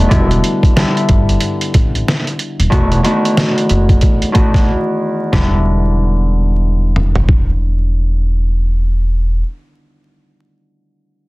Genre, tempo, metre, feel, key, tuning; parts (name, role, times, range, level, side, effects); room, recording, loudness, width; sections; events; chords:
hip hop, boom-bap hip-hop; 92 BPM; 4/4; swing 60% on 16ths; E minor; A4 = 438 Hz
Celtic harp; accompaniment; 0.0-9.4 s; E2 to F#4; -17 LUFS; left 1 dB; cassette tape, high-pass filter, low-pass filter
upright bass; bass; 0.0-9.4 s; D#1 to A1; -14 LUFS; equal
trip hop sampler-style drum kit; drums; 0.1-7.5 s; hi-hat, kick drum, snare drum, toms; -13 LUFS; equal
little or no reverb; dense, heavily limited modern master, vinyl crackle; -12 LUFS; side -22 dB against mid
0.1-5.3 A section; 5.3-7.9 B section
break 4.7-5.3
0.1 Em7; 2.7 B7/E; 5.3 Em7